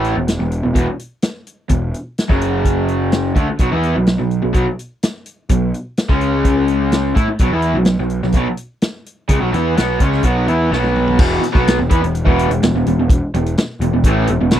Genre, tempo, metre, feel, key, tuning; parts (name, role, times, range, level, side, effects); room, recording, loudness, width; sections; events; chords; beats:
classic rock; 126 BPM; 4/4; straight; E major; A4 = 437 Hz
raw garage guitar; riff; 0.0-14.6 s; E2 to E4; -17 LUFS; equal; overdrive
fuzz picked electric bass; bass; 0.0-14.6 s; E1 to A2; -19 LUFS; equal; overdrive
vintage drum kit; drums; 0.0-14.6 s; crash cymbal, hi-hat, kick drum, snare drum, toms; -16 LUFS; equal
little or no reverb; dry, close 1970s-style studio recording; -14 LUFS; side -11 dB against mid
0.0-11.2 A section; 11.2-14.6 B section
drum fill 10.7-11.2
0.0 E5; 2.3 F#5; 3.4 E7sus4; 3.6 B5; 6.1 C#5; 7.2 B5; 11.2 E5
0.28 0.75 1.23 | 1.70 2.18 2.65 3.12 | 3.60 4.07 4.55 5.02 | 5.50 5.97 6.45 6.92 | 7.40 7.87 8.35 8.82 | 9.30 9.77 10.25 10.72 | 11.20 11.67 12.15 12.62 | 13.09 13.57 14.04 14.51